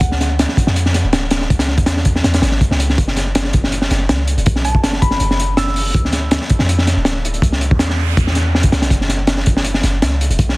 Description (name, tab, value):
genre	drum and bass, jungle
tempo	162 BPM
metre	4/4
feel	straight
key	F# minor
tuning	A4 = 440 Hz
part	thumb-piano-like synth pluck	melody	0.0-0.1, 4.6-5.9 s	A5 to E6	-26 LUFS	equal	chorus, cassette tape, dub echo
part	warm 808-style bass	bass	0.0-10.6 s	D1 to F2	-18 LUFS	equal	tube saturation
part	crunchy breakbeat drum kit	drums	0.0-10.6 s	hi-hat, kick drum, snare drum	-15 LUFS	equal	none
part	noise sweep	sound effects	7.6-8.9 s	none	-28 LUFS	right 4 dB	none
room	studio ambience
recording	dense, heavily limited modern master, vinyl crackle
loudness	-13 LUFS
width	side -22 dB against mid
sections	0.0-10.6 A section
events	noise sweep 7.6-8.9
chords	0.0 Dm; 1.5 C#m; 3.0 F#5; 4.5 B5; 5.9 Dm; 7.4 C#m; 8.9 F#5